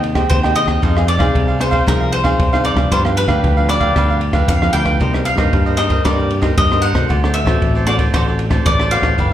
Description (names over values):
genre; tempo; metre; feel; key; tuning
samba and choro; 115 BPM; 4/4; straight; unclear; A4 = 436 Hz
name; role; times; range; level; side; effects
bowl-back mandolin; melody; 0.0-9.3 s; Bb4 to G5; -20 LUFS; left 2 dB; slapback echo
cavaquinho; accompaniment; 0.0-9.3 s; D4 to G5; -22 LUFS; right 3 dB; slapback echo
nylon-string guitar; accompaniment; 0.0-9.3 s; G2 to Ab4; -24 LUFS; left 4 dB; slapback echo
fingered electric bass; bass; 0.0-9.3 s; G1 to G2; -18 LUFS; equal; none
compact cocktail drum kit; drums; 0.0-9.3 s; kick drum, ride cymbal, rim click; -18 LUFS; equal; none
room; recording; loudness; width
light reverb; live gig heard through the venue's PA, club reverb; -13 LUFS; side -11 dB against mid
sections
0.0-9.3 A section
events
none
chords
0.0 Abmaj7; 0.8 Fm7; 2.9 G7; 5.0 Cm7; 7.1 D7